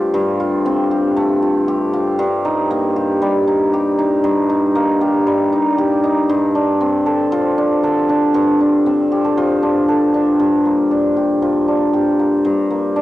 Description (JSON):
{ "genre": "folktronica", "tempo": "117 BPM", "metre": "4/4", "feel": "straight", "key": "G minor", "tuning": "A4 = 440 Hz", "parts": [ { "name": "hammered dulcimer", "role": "solo", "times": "0.0-13.0 s", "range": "G2 to A4", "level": "-14 LUFS", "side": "equal", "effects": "cassette tape" } ], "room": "wet small room reverb, RT60 0.5 s", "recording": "home recording on cassette", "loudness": "-14 LUFS", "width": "side -16 dB against mid", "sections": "0.0-10.4 A section; 10.4-13.0 B section", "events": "none", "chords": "0.0 Fadd9/G; 2.2 Eb/G; 6.3 Dm7/G; 10.4 Gm7" }